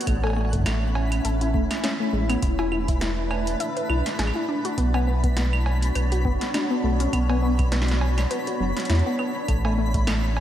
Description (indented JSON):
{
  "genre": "IDM",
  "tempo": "102 BPM",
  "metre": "4/4",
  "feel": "swing 56% on 16ths",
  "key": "B minor",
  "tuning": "A4 = 442 Hz",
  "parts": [
    { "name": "granular cloud pad", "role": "sustained chords", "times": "0.0-10.4 s", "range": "A3 to E5", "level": "-29 LUFS", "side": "equal", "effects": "built-in reverb, wide subtle chorus" },
    { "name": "warbly dusty pluck", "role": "arpeggios", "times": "0.0-10.2 s", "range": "F#3 to E5", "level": "-28 LUFS", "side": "left 2 dB", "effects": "chorus, diffuse ambient delay" },
    { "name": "electro analog drum machine", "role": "drums", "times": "0.0-10.4 s", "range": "claves, cowbell, hi-hat, snare drum", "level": "-30 LUFS", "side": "right 2 dB", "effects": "analog delay" },
    { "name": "twinkling granular texture", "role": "texture", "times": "0.0-10.4 s", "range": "B5", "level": "-37 LUFS", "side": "left 1 dB", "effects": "built-in reverb" },
    { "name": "warm sub bass", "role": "bass", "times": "0.1-10.4 s", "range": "E1 to E2", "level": "-23 LUFS", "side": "equal", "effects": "none" },
    { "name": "electronic kick drum", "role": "drums", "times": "0.1-10.0 s", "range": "none", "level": "-25 LUFS", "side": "equal", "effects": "none" }
  ],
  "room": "moderate lush hall reverb, RT60 1.7 s",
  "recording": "dreamy mix soaked in reverb",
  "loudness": "-21 LUFS",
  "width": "side -11 dB against mid",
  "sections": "0.0-10.4 A section",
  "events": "none",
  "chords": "0.1 A; 2.4 E7sus4; 4.8 Bmadd9; 9.5 A"
}